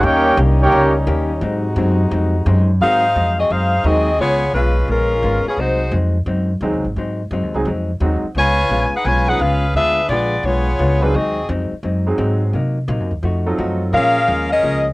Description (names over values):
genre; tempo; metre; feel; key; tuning
jazz, big band swing; 173 BPM; 4/4; swing 65% on 8ths; Ab mixolydian; A4 = 440 Hz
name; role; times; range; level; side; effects
mellow trumpet section; melody; 0.0-0.9 s; Eb4 to G5; -15 LUFS; equal; none
bright trombone section; second line; 0.0-0.9 s; Bb3 to G4; -17 LUFS; right 2 dB; cassette tape
vintage hollow-body jazz guitar; accompaniment; 0.0-14.9 s; Ab2 to G4; -24 LUFS; left 2 dB; cassette tape
brilliant trombone section; sustained chords; 0.0-2.8 s; C3 to Gb4; -23 LUFS; left 1 dB; cassette tape
upright bass; bass; 0.0-14.9 s; Ab1 to C3; -18 LUFS; equal; none
clear saxophone section; melody; 2.8-5.9, 8.4-11.5, 13.9-14.9 s; F3 to Ab5; -16 LUFS; left 1 dB; none
clear upright piano; accompaniment; 2.8-4.1, 6.6-14.1 s; Eb3 to Bb4; -22 LUFS; right 2 dB; cassette tape
room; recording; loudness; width
little or no reverb; home recording on cassette; -15 LUFS; side -21 dB against mid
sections
0.0-2.8 A section; 2.8-14.9 B section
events
none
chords
0.0 Eb7; 1.4 Ab7; 4.2 Db7; 5.6 Ab7; 8.4 Db7; 9.7 Ddim7; 11.1 Ab7; 12.5 Cm7b5; 13.2 F7b9; 13.9 Bbm7